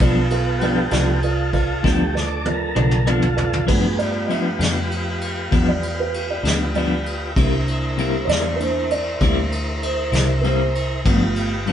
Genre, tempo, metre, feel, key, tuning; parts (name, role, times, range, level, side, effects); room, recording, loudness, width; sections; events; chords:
slow blues; 65 BPM (dotted quarters); 12/8; straight; G mixolydian; A4 = 440 Hz
dark concert grand piano; accompaniment; 0.0-11.5 s; A3 to F5; -25 LUFS; right 4 dB
semi-hollow electric guitar; accompaniment; 0.0-11.7 s; G2 to E4; -22 LUFS; left 3 dB; tremolo
tonewheel organ; sustained chords; 0.0-11.7 s; F#3 to D5; -26 LUFS; equal; slow rotary speaker
vintage muted fingered electric bass; bass; 0.0-11.7 s; G1 to G2; -23 LUFS; equal
vintage brush drum kit; drums; 0.0-11.7 s; crash cymbal, kick drum, ride cymbal, snare drum, toms; -24 LUFS; equal
wet studio reverb, RT60 0.5 s; band playing live in one room, nothing above 10.7 kHz; -18 LUFS; side -9 dB against mid
0.0-3.7 A section; 3.7-11.7 A section
tonewheel organ solo 0.0-3.7; drum fill 1.8-3.7; grand piano solo 3.7-11.7
0.0 G7; 7.4 C7; 11.1 G7